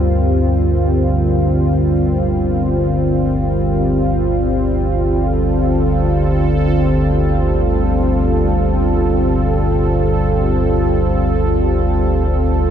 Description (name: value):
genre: dark ambient drone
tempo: free time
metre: none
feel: none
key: unclear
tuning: A4 = 440 Hz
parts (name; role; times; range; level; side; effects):
- sweeping resonant pad; sustained chords; 0.0-12.7 s; G3 to Bb4; -17 LUFS; equal; chorus
- deep rumbling drone; drone; 0.0-12.7 s; G1 to D2; -16 LUFS; equal; built-in reverb, lush chorus
room: moderate huge ambient reverb, RT60 8.7 s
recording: none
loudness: -14 LUFS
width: side -9 dB against mid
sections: 0.0-12.7 A section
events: none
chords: 0.0 Gm; 3.9 Dm/G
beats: free time